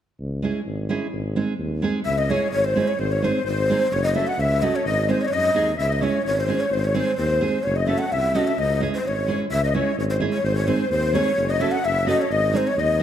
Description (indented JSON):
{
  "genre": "balkan folk, Balkan wedding band",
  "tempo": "129 BPM",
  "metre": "2/4",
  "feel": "straight",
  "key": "C# harmonic minor",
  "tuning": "A4 = 440 Hz",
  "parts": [
    { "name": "mellow tuba", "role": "bass", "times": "0.2-13.0 s", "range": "F#1 to F#2", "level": "-25 LUFS", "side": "left 1 dB", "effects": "none" },
    { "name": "nylon-string guitar", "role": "accompaniment", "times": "0.4-13.0 s", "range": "G#3 to A4", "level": "-25 LUFS", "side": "right 4 dB", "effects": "none" },
    { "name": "musette accordion", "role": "second line", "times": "2.0-13.0 s", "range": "B#4 to F#5", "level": "-27 LUFS", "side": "left 5 dB", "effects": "none" },
    { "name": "breathy low ney", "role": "melody", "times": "2.1-13.0 s", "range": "B#4 to F#5", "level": "-23 LUFS", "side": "equal", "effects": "none" }
  ],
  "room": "moderate scoring stage reverb, RT60 1.6 s",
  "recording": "dark, warm production",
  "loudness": "-20 LUFS",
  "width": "side -10 dB against mid",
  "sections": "0.2-2.1 A section; 2.1-9.5 B section; 9.5-13.0 B section",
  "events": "none",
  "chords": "0.2 C#m; 1.1 G#; 2.1 C#m; 3.0 G#; 3.9 F#m; 4.8 G#; 5.8 C#m; 6.7 G#; 7.6 F#m; 8.6 C#m; 10.4 G#; 11.4 F#m; 12.3 G#"
}